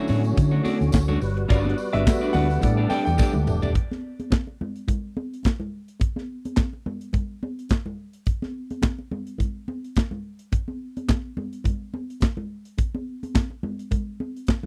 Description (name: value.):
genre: disco.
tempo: 106 BPM.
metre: 4/4.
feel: swing 56% on 16ths.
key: unclear.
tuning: A4 = 440 Hz.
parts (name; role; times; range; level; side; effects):
clean electric guitar; accompaniment; 0.0-3.7 s; A3 to D5; -32 LUFS; equal; spring reverb.
clear grand piano; accompaniment; 0.0-3.8 s; F#3 to G5; -31 LUFS; equal; none.
percussive tonewheel organ; sustained chords; 0.0-3.7 s; D3 to B4; -32 LUFS; equal; overdrive, chorus vibrato, slow rotary speaker.
hollow-body short-scale fingered electric bass; bass; 0.1-3.7 s; Eb1 to D3; -25 LUFS; equal; none.
modern studio drum kit; drums; 0.1-14.6 s; handclaps, hi-hat, kick drum, snare drum, toms; -24 LUFS; equal; none.
congas; percussion; 0.1-14.7 s; none; -35 LUFS; equal; none.
tambourine; percussion; 0.1-3.7 s; none; -49 LUFS; equal; none.
room: little or no reverb.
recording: dry, close 1970s-style studio recording.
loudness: -25 LUFS.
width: mono.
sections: 0.0-3.8 A section; 3.8-14.7 B section.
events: grand piano solo 0.0-3.8; drum fill 3.2-3.8.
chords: 0.0 Dmaj7; 1.2 Gmaj7; 2.6 A7sus4; 3.8 N.C..